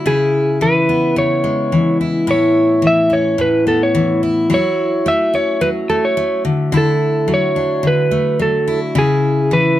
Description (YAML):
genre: pop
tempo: 108 BPM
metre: 4/4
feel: straight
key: unclear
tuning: A4 = 440 Hz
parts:
  - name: picked steel-string acoustic guitar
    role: accompaniment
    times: 0.0-9.8 s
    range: A2 to E4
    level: -15 LUFS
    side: left 2 dB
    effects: none
  - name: electric slide guitar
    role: melody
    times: 0.1-9.8 s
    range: G#4 to E5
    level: -16 LUFS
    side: right 1 dB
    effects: none
room: moderate studio reverb, RT60 0.6 s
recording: close, detailed microphones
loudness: -13 LUFS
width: side -13 dB against mid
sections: 0.0-9.8 A section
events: none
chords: 0.1 C#m7; 2.3 Aadd9; 4.5 F#m7; 6.4 Dadd9; 8.9 C#m7